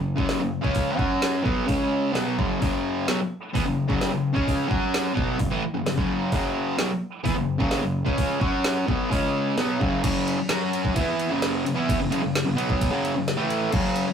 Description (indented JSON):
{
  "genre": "garage rock duo or trio",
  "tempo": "129 BPM",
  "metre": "4/4",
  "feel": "straight",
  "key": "unclear",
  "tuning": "A4 = 441 Hz",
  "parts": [
    { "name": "fuzz guitar", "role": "riff", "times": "0.0-14.1 s", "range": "F#2 to F#4", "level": "-23 LUFS", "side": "equal", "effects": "distortion" },
    { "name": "garage drum kit", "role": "drums", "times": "0.2-14.1 s", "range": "crash cymbal, hi-hat, kick drum, ride cymbal, snare drum", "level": "-27 LUFS", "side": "equal", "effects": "none" }
  ],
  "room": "wet small room ambience, RT60 0.5 s",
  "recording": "rough rehearsal-room recording, tube saturation",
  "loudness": "-22 LUFS",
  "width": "side -7 dB against mid",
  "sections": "0.0-10.0 A section; 10.0-14.1 B section",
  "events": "kick and snare drop out 9.8",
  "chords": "0.0 F#5; 1.7 C#5; 2.2 F#5; 9.1 C#5; 9.6 F#5"
}